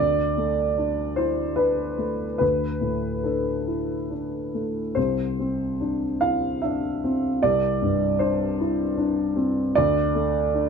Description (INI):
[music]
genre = neoclassical minimalist piano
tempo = 69-77 BPM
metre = 3/4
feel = rubato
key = C major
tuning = A4 = 444 Hz
[part]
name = dark upright piano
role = solo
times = 0.0-10.7 s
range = C2 to F5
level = -21 LUFS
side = equal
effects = none
[sound]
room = moderate studio reverb, RT60 0.7 s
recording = dark, warm production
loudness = -22 LUFS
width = side -6 dB against mid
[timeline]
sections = 0.0-10.7 A section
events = none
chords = 0.0 Cmaj13/D; 5.0 Csus2; 9.8 D5